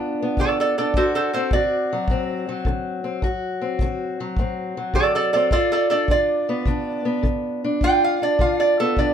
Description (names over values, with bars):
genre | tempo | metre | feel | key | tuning
acoustic country blues, solo or duo | 105 BPM | 4/4 | swing 67% on 8ths | D mixolydian | A4 = 440 Hz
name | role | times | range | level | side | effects
fingerpicked steel-string acoustic guitar | accompaniment | 0.0-9.1 s | D2 to F#4 | -23 LUFS | left 2 dB | none
lap resonator guitar | melody | 0.4-9.1 s | A4 to G5 | -20 LUFS | right 3 dB | none
kick drum | drums | 0.4-9.1 s | none | -23 LUFS | equal | none
room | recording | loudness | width
light reverb | minimal, uncompressed stereo recording | -19 LUFS | side -8 dB against mid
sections
0.0-9.1 A section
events
none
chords
0.0 G7 (rootless); 1.0 D7; 5.5 G7